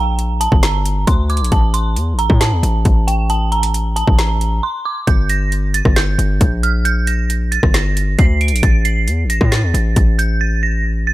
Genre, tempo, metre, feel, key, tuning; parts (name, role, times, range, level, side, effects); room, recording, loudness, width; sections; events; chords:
hip hop, trap; 135 BPM; 4/4; half-time; A4 = 440 Hz
dark detuned synth bell; melody; 0.0-11.1 s; G5 to D7; -20 LUFS; right 4 dB; chorus, tape echo
distorted 808-style bass; bass; 0.0-11.1 s; G1 to A2; -16 LUFS; equal; distortion
trap drum kit; drums; 0.2-10.3 s; hi-hat, kick drum, rim click, snare drum; -15 LUFS; equal
little or no reverb; -13 LUFS; side -16 dB against mid
0.0-5.1 A section; 5.1-11.1 B section
break 4.6-5.1, 10.4-11.1
0.0 Gm; 1.5 A5; 5.1 Gm; 8.6 A5